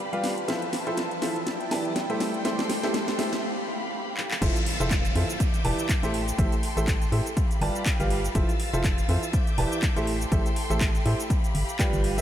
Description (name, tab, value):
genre	piano house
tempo	122 BPM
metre	4/4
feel	swing 56% on 16ths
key	A minor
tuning	A4 = 440 Hz
part	warm studio violin section	sustained chords	0.0-12.2 s	E4 to A6	-35 LUFS	left 1 dB	sidechain pumping, low-pass filter
part	riser and downlifter	sound effects	0.1-8.4 s	none	-37 LUFS	equal	none
part	warbly tape-like pad	texture	0.0-3.4 s	E4 to A5	-37 LUFS	equal	chorus, built-in reverb, sidechain pumping
part	clear upright piano	riff	0.1-12.2 s	E3 to A5	-30 LUFS	right 1 dB	sidechain pumping, tape echo
part	house drum kit	drums	0.1-12.2 s	cabasa, crash cymbal, handclaps, hi-hat, snare drum	-32 LUFS	equal	overdrive
part	organ-like FM bass	bass	4.4-12.2 s	E1 to A2	-27 LUFS	equal	sidechain pumping
part	electronic kick drum	drums	4.4-11.9 s	none	-26 LUFS	equal	overdrive
room	moderate huge ambient reverb, RT60 6.3 s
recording	dreamy mix soaked in reverb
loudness	-23 LUFS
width	side -11 dB against mid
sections	0.0-4.4 A section; 4.4-12.2 B section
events	build-up 0.0-4.4; drum fill 0.0-3.4, 4.2; riser 0.1-3.4; break 3.4-4.4; drop 4.4-12.2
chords	0.5 Fmaj7; 1.5 Em7; 2.2 Am7; 3.4 G7; 4.4 Fmaj7; 5.4 Em7; 6.1 Am7; 7.4 G7; 8.4 Fmaj7; 9.3 Em7; 10.1 Am7; 11.3 G7